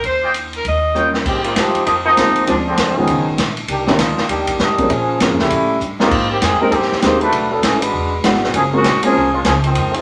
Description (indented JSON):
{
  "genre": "jazz, big band swing",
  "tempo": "198 BPM",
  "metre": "4/4",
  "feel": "swing 62% on 8ths",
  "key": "unclear",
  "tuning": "A4 = 440 Hz",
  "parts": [
    { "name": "warm saxophone section", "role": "melody", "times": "0.0-1.1 s", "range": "Bb4 to Eb5", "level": "-21 LUFS", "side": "equal", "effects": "none" },
    { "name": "upright bass", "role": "bass", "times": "0.0-10.0 s", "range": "E1 to Bb2", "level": "-27 LUFS", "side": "equal", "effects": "none" },
    { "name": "swinging big-band drum kit", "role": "drums", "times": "0.0-10.0 s", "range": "crash cymbal, hi-hat, kick drum, ride cymbal, snare drum", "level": "-22 LUFS", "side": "equal", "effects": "none" },
    { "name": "clear trumpet section", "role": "stabs", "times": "0.2-1.1 s", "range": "F4 to G5", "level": "-23 LUFS", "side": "equal", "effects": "none" },
    { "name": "warm baby grand piano", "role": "accompaniment", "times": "0.9-9.1 s", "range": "Eb3 to Ab4", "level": "-21 LUFS", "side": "equal", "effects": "none" },
    { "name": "clear trombone section", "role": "second line", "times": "1.3-10.0 s", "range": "Db3 to C5", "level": "-19 LUFS", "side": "equal", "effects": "none" }
  ],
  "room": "wet club reverb, RT60 0.6 s",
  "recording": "none",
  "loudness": "-16 LUFS",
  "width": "mono",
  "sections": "0.0-1.3 A section; 1.3-10.0 B section",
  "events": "drum fill 1.0-1.3, 5.8-6.1; trombone section solo 1.3-10.0",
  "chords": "0.0 Ebmaj7sus2; 0.7 Eb9; 1.3 Ab69; 2.5 Dm7b5; 3.1 Db9; 3.7 Cm9; 4.9 Bbm7; 5.5 A7#11; 6.1 Abmaj9; 7.3 Bm7; 7.9 E9; 8.5 Gbmaj9#11"
}